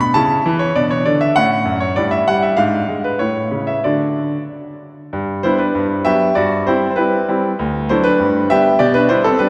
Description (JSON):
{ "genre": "classical-period piano sonatina", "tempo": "98 BPM", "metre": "2/4", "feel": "rubato", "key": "D major, G major from 5.1 s", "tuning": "A4 = 440 Hz", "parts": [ { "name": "bright concert grand piano", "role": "solo", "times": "0.0-9.5 s", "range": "D2 to B5", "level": "-16 LUFS", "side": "equal", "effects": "none" } ], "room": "wet church reverb, RT60 3.5 s", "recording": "recorded in a church or concert hall", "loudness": "-16 LUFS", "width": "mono", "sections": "0.0-5.1 A section; 5.1-9.5 B section", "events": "none", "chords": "0.2 A/C#; 0.8 Bmadd9; 1.4 F#m/A; 2.0 Em/G; 2.6 G#dim7; 3.2 A; 3.8 D; 5.1 G; 5.7 Bm/G; 6.4 Cmaj7/G; 7.6 D; 8.2 G; 8.8 G/B" }